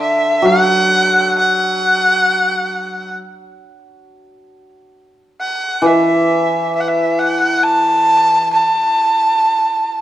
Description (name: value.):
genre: chinese traditional.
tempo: 67 BPM.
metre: 4/4.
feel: rubato.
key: unclear.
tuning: A4 = 444 Hz.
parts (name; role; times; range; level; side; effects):
rich erhu; melody; 0.0-10.0 s; E5 to A5; -13 LUFS; equal; none.
hammered dulcimer; accompaniment; 0.0-8.5 s; D3 to F#3; -18 LUFS; equal; none.
room: moderate recital hall reverb, RT60 1.6 s.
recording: dark, warm production.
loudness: -12 LUFS.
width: side -13 dB against mid.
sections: 0.0-10.0 A section.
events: none.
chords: none.